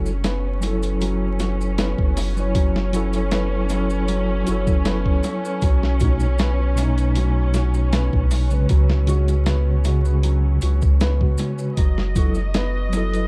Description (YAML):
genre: trip hop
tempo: 78 BPM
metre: 4/4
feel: straight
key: F# dorian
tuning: A4 = 440 Hz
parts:
  - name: mellow tine electric piano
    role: accompaniment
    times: 0.0-13.3 s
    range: B2 to C#5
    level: -27 LUFS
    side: equal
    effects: tremolo, tape echo
  - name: muted chamber violin section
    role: sustained chords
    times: 0.0-13.3 s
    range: C#4 to D#5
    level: -32 LUFS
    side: equal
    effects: none
  - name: felt-muted upright piano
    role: arpeggios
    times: 0.0-13.3 s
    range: F#3 to F#4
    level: -33 LUFS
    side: equal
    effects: analog delay
  - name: soft dub sub bass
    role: bass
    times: 0.0-13.3 s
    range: F#1 to C#2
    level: -23 LUFS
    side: equal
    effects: none
  - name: maracas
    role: percussion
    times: 0.1-13.3 s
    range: none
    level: -44 LUFS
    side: equal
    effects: none
  - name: boom bap sampler-style drum kit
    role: drums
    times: 0.2-13.3 s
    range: hi-hat, kick drum, snare drum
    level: -24 LUFS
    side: equal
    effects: small room reverb, analog delay
room: small room reverb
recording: echo-heavy mix, vinyl crackle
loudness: -20 LUFS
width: mono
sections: 0.0-13.3 A section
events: none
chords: 0.0 F#m7; 5.6 B7; 8.7 C#sus4; 11.8 F#m7